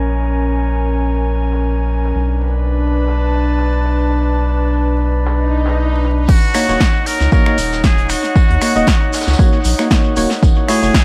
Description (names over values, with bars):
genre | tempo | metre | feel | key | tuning
deep house | 116 BPM | 4/4 | swing 55% on 16ths | Eb minor | A4 = 440 Hz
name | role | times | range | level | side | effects
round analog bass | bass | 0.0-10.9 s | Eb1 to Eb2 | -19 LUFS | equal | sidechain pumping
airy breathy pad | texture | 0.0-11.0 s | A3 to A5 | -23 LUFS | equal | chorus, sidechain pumping
vintage brush drum kit | drums | 0.1-11.0 s | hi-hat, snare drum, tambourine | -33 LUFS | equal | sidechain pumping on hats, high-pass filter on hats, low-pass filter on hats, high-pass filter on snare, low-pass filter on snare, sidechain pumping on perc, high-pass filter on perc, low-pass filter on perc, high-pass filter on room, low-pass filter on room, tape echo
swell | sound effects | 5.4-6.3 s | none | -27 LUFS | equal | none
trumpet with straight mute | melody | 6.3-11.0 s | Gb4 to Bb4 | -23 LUFS | equal | tape echo
deep house drum kit | drums | 6.3-11.0 s | crash cymbal, finger snaps, hi-hat, snare drum | -24 LUFS | equal | tape echo
electronic kick drum | drums | 6.3-11.0 s | none | -15 LUFS | equal | none
shekere | percussion | 6.3-11.0 s | none | -32 LUFS | equal | tape echo
percussive organ stab | stabs | 6.5-10.9 s | A3 to Eb5 | -20 LUFS | equal | subtle chorus, vintage 12-bit sampler grit, sidechain pumping, tape echo
room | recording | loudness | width
light reverb, studio ambience | echo-heavy mix, vinyl crackle, low-pass filter | -15 LUFS | mono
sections
0.0-6.3 A section; 6.3-11.0 B section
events
swell 5.4-6.3; drop 6.3-11.0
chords
0.0 Bbm7; 2.1 Bm7; 6.3 Ebm7; 10.4 Gbm7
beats
| 0.08 0.60 1.12 1.63 | 2.15 2.67 3.19 3.70 | 4.22 4.74 5.25 5.77 | 6.29 6.80 7.32 7.84 | 8.36 8.87 9.39 9.91 | 10.43 10.94